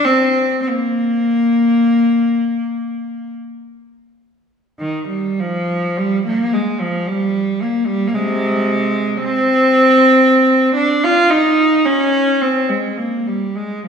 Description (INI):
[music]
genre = classical, free, expressive piece for unaccompanied cello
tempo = 35-58 BPM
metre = 3/4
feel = rubato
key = unclear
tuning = A4 = 439 Hz
[part]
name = rich cello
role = solo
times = 0.0-13.9 s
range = C3 to F4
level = -13 LUFS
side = equal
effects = none
[sound]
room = wet scoring stage reverb, RT60 1.7 s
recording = recorded in a church or concert hall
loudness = -13 LUFS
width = side -6 dB against mid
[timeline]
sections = 0.0-4.8 A section; 4.8-13.9 B section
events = none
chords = none